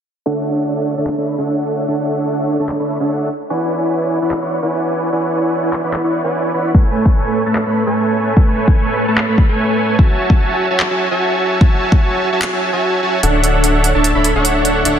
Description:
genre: future bass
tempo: 148 BPM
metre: 4/4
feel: swing 53% on 16ths, half-time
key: unclear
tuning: A4 = 440 Hz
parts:
  - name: dense compressed supersaw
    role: riff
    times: 0.3-15.0 s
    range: A3 to C#6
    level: -15 LUFS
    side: right 1 dB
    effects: sidechain pumping, low-pass filter, tape echo
  - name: dubstep drum kit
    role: drums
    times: 1.1-14.9 s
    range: handclaps, hi-hat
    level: -22 LUFS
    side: equal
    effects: studio reverb
  - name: electronic kick drum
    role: drums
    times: 6.7-12.0 s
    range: none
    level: -11 LUFS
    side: equal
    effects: overdrive, studio reverb
  - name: saturated sub bass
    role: bass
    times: 13.2-15.0 s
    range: D1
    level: -17 LUFS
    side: equal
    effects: sidechain pumping
room: light reverb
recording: dense, heavily limited modern master, low-pass filter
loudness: -13 LUFS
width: side -9 dB against mid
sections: 0.3-13.2 A section; 13.2-15.0 B section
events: filter sweep 0.3-13.2; break 12.4-13.2; build-up 13.2-15.0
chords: 0.3 Dmaj9; 3.3 E13; 6.7 Amaj7; 10.0 F#m9; 13.2 Dmaj9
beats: | 0.26 0.66 1.07 1.48 | 1.88 2.29 2.69 3.10 | 3.50 3.91 4.31 4.72 | 5.12 5.53 5.93 6.34 | 6.75 7.15 7.56 7.96 | 8.37 8.77 9.18 9.58 | 9.99 10.39 10.80 11.21 | 11.61 12.02 12.42 12.83 | 13.23 13.64 14.04 14.45 | 14.85

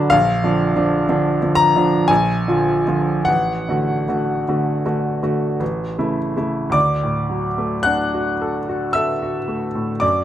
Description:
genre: classical, romantic nocturne for solo piano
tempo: 48-64 BPM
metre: 3/4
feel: rubato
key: unclear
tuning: A4 = 440 Hz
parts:
  - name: clear baby grand piano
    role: solo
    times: 0.0-10.2 s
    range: A1 to F#6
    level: -16 LUFS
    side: equal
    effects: none
room: moderate recital hall reverb, RT60 1.5 s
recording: close, detailed microphones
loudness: -17 LUFS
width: side -11 dB against mid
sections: 0.0-6.7 A section; 6.7-10.2 B section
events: none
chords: 0.1 Bb; 3.3 D/A; 5.6 A; 6.7 D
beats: | 0.12 1.07 2.10 | 3.27 4.47 5.61 | 6.75 7.87 8.96 | 10.02

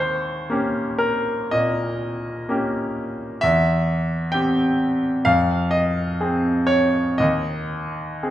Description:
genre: classical, romantic character piece for solo piano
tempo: 55-66 BPM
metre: 4/4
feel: rubato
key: unclear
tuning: A4 = 440 Hz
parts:
  - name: bright grand piano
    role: solo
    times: 0.0-8.3 s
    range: Eb2 to G5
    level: -19 LUFS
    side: equal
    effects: none
room: wet recital hall reverb, RT60 1.7 s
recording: minimal, uncompressed stereo recording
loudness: -19 LUFS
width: side -12 dB against mid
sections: 0.0-8.3 A section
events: none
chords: 0.0 Eb7; 3.4 C/E; 5.3 Fm; 7.2 N.C.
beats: 0.48 1.52 2.48 | 3.42 4.35 5.27 6.21 | 7.20 8.23

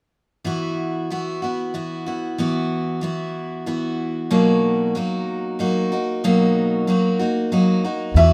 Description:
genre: folk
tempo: 94 BPM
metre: 3/4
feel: straight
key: B major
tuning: A4 = 439 Hz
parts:
  - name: picked steel-string acoustic guitar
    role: accompaniment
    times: 0.4-8.3 s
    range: B2 to F#4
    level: -22 LUFS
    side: equal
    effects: none
  - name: upright bass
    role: bass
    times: 8.1-8.3 s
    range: E2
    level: -15 LUFS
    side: equal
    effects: none
  - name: felt-muted upright piano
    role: melody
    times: 8.2-8.3 s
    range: E5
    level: -16 LUFS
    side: equal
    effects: none
room: moderate large studio reverb, RT60 1.3 s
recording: none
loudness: -21 LUFS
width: mono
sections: 0.5-8.2 A section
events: none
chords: 0.5 Esus2; 4.3 Bmaj7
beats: | 0.46 1.10 1.74 | 2.39 3.03 3.67 | 4.31 4.95 5.59 | 6.24 6.88 7.52 | 8.16

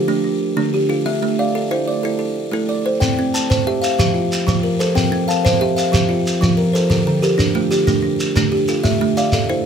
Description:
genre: southern african traditional, mbira-style interlocking cycle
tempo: 123 BPM (dotted quarters)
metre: 12/8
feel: straight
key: unclear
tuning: A4 = 440 Hz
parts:
  - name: buzzing kalimba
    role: arpeggios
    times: 0.0-9.7 s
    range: D3 to G5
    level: -18 LUFS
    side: left 1 dB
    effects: none
  - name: kalimba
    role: arpeggios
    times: 0.0-9.7 s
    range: D3 to A5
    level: -21 LUFS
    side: right 3 dB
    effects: none
  - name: shekere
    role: percussion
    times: 3.0-9.5 s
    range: none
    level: -20 LUFS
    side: right 1 dB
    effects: none
room: light reverb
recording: close, detailed microphones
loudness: -15 LUFS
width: side -7 dB against mid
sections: 0.0-9.7 A section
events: none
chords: 0.0 Dm; 1.1 Am; 3.0 C; 4.0 F; 5.0 C; 5.9 F; 6.9 Dm; 8.9 Am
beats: 0.08 0.57 | 1.06 1.55 2.04 2.53 | 3.02 3.50 3.99 4.48 | 4.96 5.45 5.94 6.42 | 6.91 7.39 7.88 8.37 | 8.85 9.34

